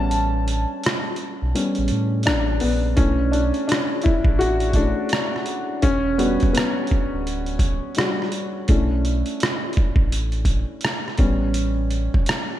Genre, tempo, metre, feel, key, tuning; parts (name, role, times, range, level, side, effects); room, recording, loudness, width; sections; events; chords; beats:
lo-fi hip hop; 84 BPM; 4/4; swing 62% on 16ths; B minor; A4 = 439 Hz
dark upright piano; accompaniment; 0.0-12.6 s; G3 to A5; -23 LUFS; left 1 dB; low-pass filter
sub bass with octave; bass; 0.0-12.1 s; D1 to A2; -23 LUFS; equal
trip hop sampler-style drum kit; drums; 0.1-12.5 s; hi-hat, kick drum, rim click; -22 LUFS; equal
light reverb, digital ambience; -19 LUFS; side -12 dB against mid
0.0-3.0 A section; 3.0-12.6 B section
upright piano solo 0.0-3.0, 3.0-12.6; kick muted 0.1-3.0
0.0 A9; 3.0 Bm11; 5.8 Em9; 8.7 Bm11; 11.2 A9
| 0.12 0.83 1.55 2.26 | 2.98 3.69 4.40 5.12 | 5.83 6.55 7.26 7.97 | 8.69 9.40 10.12 10.83 | 11.55 12.26